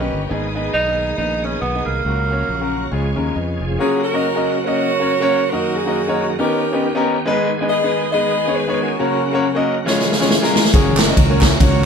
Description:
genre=uptempo gospel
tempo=138 BPM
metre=4/4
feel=swing 58% on 8ths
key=F# major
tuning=A4 = 439 Hz
part: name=warm tenor saxophone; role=melody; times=0.0-3.1 s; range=A#3 to D#4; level=-21 LUFS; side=right 3 dB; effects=none
part: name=clear baby grand piano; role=accompaniment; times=0.0-11.8 s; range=G#2 to D#5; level=-20 LUFS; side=left 2 dB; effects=none
part: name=bright tonewheel organ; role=sustained chords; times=0.0-11.9 s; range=F#2 to G#4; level=-26 LUFS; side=right 4 dB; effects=fast rotary speaker, overdrive, chorus vibrato
part: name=dark studio string section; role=sustained chords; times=0.0-3.8 s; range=C#5 to D#6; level=-33 LUFS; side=left 3 dB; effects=none
part: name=fingered electric bass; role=bass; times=0.0-3.8, 10.7-11.9 s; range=E#1 to E#2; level=-21 LUFS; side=equal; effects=none
part: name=bright saxophone section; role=melody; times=3.8-11.9 s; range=C#4 to D#5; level=-20 LUFS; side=right 1 dB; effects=slapback echo
part: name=swinging big-band drum kit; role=drums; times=9.9-11.7 s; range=kick drum, ride cymbal, snare drum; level=-14 LUFS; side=equal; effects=none
part: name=group handclap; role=percussion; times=11.0-11.5 s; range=none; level=-25 LUFS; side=right 3 dB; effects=none
room=light reverb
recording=band playing live in one room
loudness=-15 LUFS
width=side -6 dB against mid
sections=0.0-3.8 A section; 3.8-11.9 B section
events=drum fill 9.9-10.7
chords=0.3 G#m; 2.1 F#/C#; 2.9 C#; 3.8 F#; 5.5 D#m/F#; 6.4 D#7b13; 7.3 G#m; 9.0 F#/C#; 9.9 C#; 10.7 F#

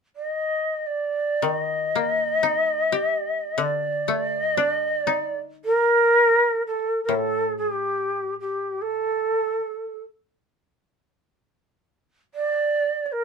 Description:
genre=japanese traditional, Japanese chamber music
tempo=free time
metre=none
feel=none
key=D miyako bushi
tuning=A4 = 440 Hz
part: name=breathy shakuhachi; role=melody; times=0.2-13.2 s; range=G4 to Eb5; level=-21 LUFS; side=right 1 dB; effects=none
part: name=koto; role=accompaniment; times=1.4-9.6 s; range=A2 to G4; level=-27 LUFS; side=left 7 dB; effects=none
room=light reverb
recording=minimal, uncompressed stereo recording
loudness=-21 LUFS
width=side -5 dB against mid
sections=0.0-7.1 A section; 7.1-13.2 B section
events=none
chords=none

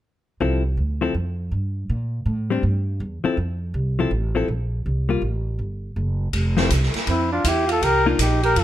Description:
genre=jazz, small-group swing and bop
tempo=162 BPM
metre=4/4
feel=swing 64% on 8ths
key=F major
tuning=A4 = 439 Hz
part: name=hollow-body jazz guitar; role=accompaniment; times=0.4-8.2 s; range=F3 to A4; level=-23 LUFS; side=left 5 dB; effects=none
part: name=upright bass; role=bass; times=0.4-8.6 s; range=F1 to Bb2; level=-22 LUFS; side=right 1 dB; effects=none
part: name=swinging big-band drum kit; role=drums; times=6.3-8.6 s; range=hi-hat, kick drum, ride cymbal, snare drum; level=-25 LUFS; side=equal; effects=none
part: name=breathy trumpet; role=melody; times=7.1-8.6 s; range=D4 to Bb4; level=-21 LUFS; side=left 3 dB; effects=none
part: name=breathy alto saxophone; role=second line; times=7.1-8.6 s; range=Bb3 to G4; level=-23 LUFS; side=right 6 dB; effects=none
room=light reverb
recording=minimal, uncompressed stereo recording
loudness=-20 LUFS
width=side -12 dB against mid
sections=0.4-6.3 A section; 6.3-8.6 B section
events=none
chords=0.4 Fmaj7; 1.9 Bbsus2; 3.4 Fmaj7; 4.9 C5; 6.3 Fmaj7(no3); 7.8 Cm7

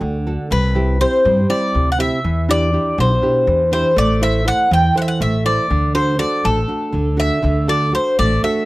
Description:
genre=greek folk, Greek bouzouki band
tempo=242 BPM (eighths)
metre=7/8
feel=straight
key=unclear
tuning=A4 = 439 Hz
part: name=nylon-string guitar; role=accompaniment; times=0.0-8.7 s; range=B2 to C5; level=-20 LUFS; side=right 2 dB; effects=none
part: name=upright bass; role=bass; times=0.0-8.4 s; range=A1 to G2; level=-19 LUFS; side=left 1 dB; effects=none
part: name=Greek bouzouki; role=melody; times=0.5-8.7 s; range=A4 to G5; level=-17 LUFS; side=left 1 dB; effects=none
room=little or no reverb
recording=dry, close 1970s-style studio recording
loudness=-14 LUFS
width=side -19 dB against mid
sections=0.5-8.7 A section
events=none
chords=0.0 D; 0.5 C; 2.2 Em7; 4.0 Am; 5.7 D

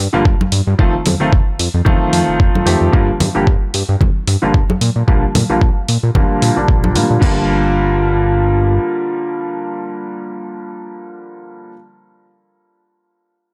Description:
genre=nu-disco, nu disco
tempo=112 BPM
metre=4/4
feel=swing 56% on 16ths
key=G minor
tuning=A4 = 440 Hz
part: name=fat analog bass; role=bass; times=0.0-8.8 s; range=F1 to Bb2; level=-19 LUFS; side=equal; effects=none
part: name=bright grand piano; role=accompaniment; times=0.1-11.7 s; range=D3 to G4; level=-20 LUFS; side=equal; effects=sidechain pumping, low-pass filter, analog delay
part: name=electronic kick drum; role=drums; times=0.3-7.3 s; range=none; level=-16 LUFS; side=equal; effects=small room ambience
part: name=congas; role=percussion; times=0.4-6.9 s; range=none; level=-22 LUFS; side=equal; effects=none
part: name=dusty soul sampler-style drum kit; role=drums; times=0.5-7.3 s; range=crash cymbal, hi-hat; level=-24 LUFS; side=equal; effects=small room ambience
room=digital ambience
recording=dry, gritty hardware recording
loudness=-15 LUFS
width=mono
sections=0.0-7.2 A section; 7.2-11.5 B section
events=filter sweep on grand piano 0.0-7.2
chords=0.0 Gm7; 0.8 F7; 2.9 Gm7; 4.8 Bb6; 7.2 Gm7

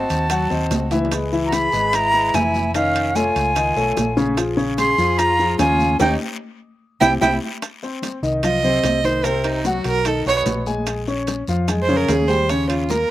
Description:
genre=Afro-Cuban jazz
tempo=148 BPM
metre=4/4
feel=straight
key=F minor from 7.6 s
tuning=A4 = 441 Hz
part: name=bright jazz flute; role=melody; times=0.0-7.3 s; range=F5 to C6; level=-19 LUFS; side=equal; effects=none
part: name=rich fiddle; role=second line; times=0.0-13.1 s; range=C#4 to Eb5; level=-23 LUFS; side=right 4 dB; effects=none
part: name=warm concert grand piano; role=accompaniment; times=0.0-13.1 s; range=B2 to Db6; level=-22 LUFS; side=left 2 dB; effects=none
part: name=hollow-body short-scale fingered electric bass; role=bass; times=0.0-13.0 s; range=F1 to F2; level=-25 LUFS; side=equal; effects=none
part: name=bongos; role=percussion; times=0.1-13.1 s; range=none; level=-29 LUFS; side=left 6 dB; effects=slapback echo
part: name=guiro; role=percussion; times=0.1-13.1 s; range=none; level=-36 LUFS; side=left 6 dB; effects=slapback echo
part: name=maracas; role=percussion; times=0.1-13.1 s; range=none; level=-35 LUFS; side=right 7 dB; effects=none
part: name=timbales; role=percussion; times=0.1-13.1 s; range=none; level=-30 LUFS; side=right 7 dB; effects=slapback echo
part: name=congas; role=percussion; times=0.3-13.1 s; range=none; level=-29 LUFS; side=left 1 dB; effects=slapback echo
room=little or no reverb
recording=recorded outdoors, with no room sound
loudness=-17 LUFS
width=side -14 dB against mid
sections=0.0-7.6 A section; 7.6-13.1 B section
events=drum fill 0.9; band accent 6.0-7.6; fiddle solo 7.6-13.1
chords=0.0 Ab7b9 (rootless); 1.1 Dbm7; 2.7 F7alt; 4.4 Bbm9; 6.0 Eb7; 6.8 C; 7.6 F5; 9.2 Ebm6; 10.1 B6; 10.9 Bbm7; 12.5 Eb7sus2

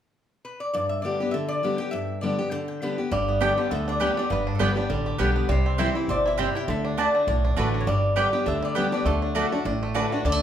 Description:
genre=bluegrass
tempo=202 BPM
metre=4/4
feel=swing 56% on 8ths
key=G major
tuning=A4 = 440 Hz
part: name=lap resonator guitar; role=melody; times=0.4-10.4 s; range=A4 to G5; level=-28 LUFS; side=left 1 dB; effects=none
part: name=picked steel-string acoustic guitar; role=accompaniment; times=0.7-10.4 s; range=G2 to G4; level=-27 LUFS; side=left 2 dB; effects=none
part: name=bluegrass banjo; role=melody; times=3.1-10.4 s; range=D3 to G4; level=-31 LUFS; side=right 2 dB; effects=none
part: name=upright bass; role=bass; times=3.1-10.4 s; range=G1 to D2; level=-27 LUFS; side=right 1 dB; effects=none
part: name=mandolin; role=stabs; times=3.4-10.1 s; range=A3 to A5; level=-28 LUFS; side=right 4 dB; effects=none
room=wet large studio reverb, RT60 0.9 s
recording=band playing live in one room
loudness=-22 LUFS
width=side -9 dB against mid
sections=0.7-3.1 A section; 3.1-10.4 B section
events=none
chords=0.0 N.C.; 0.7 G; 5.5 C; 6.7 D; 7.9 G; 9.1 D

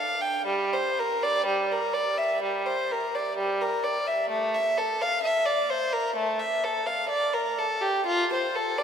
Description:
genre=classical, baroque-style suite movement for unaccompanied violin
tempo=64 BPM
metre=4/4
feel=rubato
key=F major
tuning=A4 = 439 Hz
part: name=rich violin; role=solo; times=0.0-8.8 s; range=G3 to G5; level=-24 LUFS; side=equal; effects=none
room=wet cathedral reverb, RT60 4.9 s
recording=minimal, uncompressed stereo recording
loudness=-24 LUFS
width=side -7 dB against mid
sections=0.0-8.8 A section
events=none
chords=none

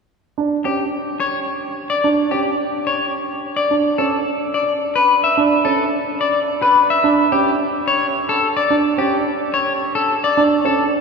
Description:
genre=classical, minimalist pattern music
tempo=108 BPM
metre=3/4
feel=straight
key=B minor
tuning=A4 = 440 Hz
part: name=warm grand piano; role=arpeggios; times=0.4-10.8 s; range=C#4 to D4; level=-20 LUFS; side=right 4 dB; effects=none
part: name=electric guitar at the edge of break-up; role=melody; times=0.7-10.8 s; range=G4 to E5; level=-17 LUFS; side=left 2 dB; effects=none
room=wet cathedral reverb, RT60 5.5 s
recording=heard from further back in the room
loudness=-15 LUFS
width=side -4 dB against mid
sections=0.4-11.0 A section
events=none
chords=none

